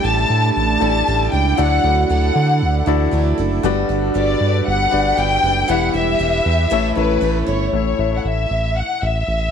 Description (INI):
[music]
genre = pop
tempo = 117 BPM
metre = 4/4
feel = straight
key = A mixolydian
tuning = A4 = 443 Hz
[part]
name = warm studio violin section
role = melody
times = 0.0-9.5 s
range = B4 to A5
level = -19 LUFS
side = left 3 dB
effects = none
[part]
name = mellow French horn section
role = second line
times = 0.0-7.5 s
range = D3 to A4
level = -27 LUFS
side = right 11 dB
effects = none
[part]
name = clear baby grand piano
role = accompaniment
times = 0.0-9.5 s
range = G2 to E5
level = -23 LUFS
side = left 11 dB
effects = none
[part]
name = lush unison pad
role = sustained chords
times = 0.1-7.7 s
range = D3 to B4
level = -28 LUFS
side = equal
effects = chorus
[part]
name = picked steel-string acoustic guitar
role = riff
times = 0.0-7.7 s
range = E2 to F#4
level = -25 LUFS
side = right 14 dB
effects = none
[part]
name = round analog bass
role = bass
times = 0.0-9.5 s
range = E1 to D3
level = -19 LUFS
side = right 1 dB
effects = none
[sound]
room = light reverb, small room ambience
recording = 1960s-style stereo with parts hard left and right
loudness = -15 LUFS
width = side -7 dB against mid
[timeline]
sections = 0.0-7.7 A section; 7.7-9.5 B section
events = none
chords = 0.0 A7sus4; 1.6 Dadd9; 3.6 Gmaj7; 5.7 Em; 6.7 A